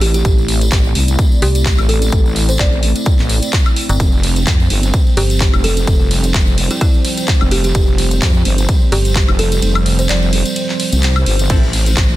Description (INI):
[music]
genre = bass house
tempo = 128 BPM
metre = 4/4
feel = swing 55% on 16ths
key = unclear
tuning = A4 = 440 Hz
[part]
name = buzzing kalimba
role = melody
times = 0.0-10.6 s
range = E4 to D5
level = -23 LUFS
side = right 1 dB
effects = ping-pong delay
[part]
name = dark analog pad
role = sustained chords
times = 0.0-12.2 s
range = F3 to D5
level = -22 LUFS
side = right 2 dB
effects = chorus, sidechain pumping
[part]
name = wobble bass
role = bass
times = 0.0-12.2 s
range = F1 to F2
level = -15 LUFS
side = equal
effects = chorus, tube saturation, sidechain pumping
[part]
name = garage drum kit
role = drums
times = 0.0-12.1 s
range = crash cymbal, handclaps, hi-hat, ride cymbal, woodblock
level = -20 LUFS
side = equal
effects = none
[part]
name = tambourine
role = percussion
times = 0.1-12.2 s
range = none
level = -27 LUFS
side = left 1 dB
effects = none
[part]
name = electronic kick drum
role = drums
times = 0.2-12.1 s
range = none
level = -14 LUFS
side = equal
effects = none
[part]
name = metallic FM bass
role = bass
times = 1.4-5.5, 8.9-9.3 s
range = G1 to C2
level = -15 LUFS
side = equal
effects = sidechain pumping
[part]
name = orchestra-hit-like synth stab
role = stabs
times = 11.5-11.6 s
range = C4 to A4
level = -26 LUFS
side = right 2 dB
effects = built-in reverb, sidechain pumping, ping-pong delay
[sound]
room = little or no reverb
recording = dense, heavily limited modern master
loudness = -11 LUFS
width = side -16 dB against mid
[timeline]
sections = 0.0-12.2 A section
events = kick drops out 9.6-11.5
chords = 0.0 Am; 4.0 Fsus2; 11.5 Am